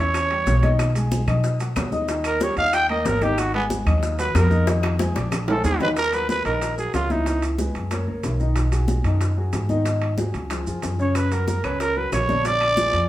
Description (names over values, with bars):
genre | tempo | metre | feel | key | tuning
Afro-Cuban jazz | 185 BPM | 4/4 | straight | Eb minor | A4 = 441 Hz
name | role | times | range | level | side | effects
growling trumpet | melody | 0.0-7.4, 11.0-13.1 s | Cb4 to G5 | -22 LUFS | right 2 dB | none
warm grand piano | accompaniment | 0.0-13.0 s | Db3 to D#6 | -27 LUFS | left 2 dB | none
upright bass | bass | 0.0-13.1 s | Ab1 to B2 | -23 LUFS | equal | none
bongos | percussion | 0.1-13.1 s | none | -31 LUFS | left 3 dB | none
claves | percussion | 0.1-5.5, 11.2-12.8 s | none | -38 LUFS | left 2 dB | none
congas | percussion | 0.1-13.1 s | none | -31 LUFS | left 1 dB | none
maracas | percussion | 0.1-13.1 s | none | -40 LUFS | right 3 dB | none
timbales | percussion | 0.1-13.1 s | none | -33 LUFS | right 4 dB | none
room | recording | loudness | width
wet large studio reverb, RT60 0.9 s | band playing live in one room | -19 LUFS | side -14 dB against mid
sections
0.0-6.0 A section; 6.0-13.1 B section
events
trumpet solo 0.0-6.0; drum fill 4.7-6.0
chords
0.0 A9 (rootless); 0.8 B6; 2.1 Eb; 3.4 Absus2; 4.7 Bbadd11; 5.3 Bb7; 6.0 Ebm7; 7.3 Dbm7; 7.9 Gb6; 8.6 B6; 9.9 Ab5; 10.5 Db; 11.2 Gb; 12.4 Bb7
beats
0.14 0.47 | 0.79 1.12 1.44 1.76 | 2.09 2.41 2.73 3.06 | 3.38 3.70 4.03 4.35 | 4.67 5.00 5.32 5.64 | 5.97 6.29 6.61 6.94 | 7.26 7.59 7.91 8.24 | 8.56 8.88 9.21 9.53 | 9.86 10.18 10.51 10.83 | 11.15 11.48 11.80 12.12 | 12.45 12.77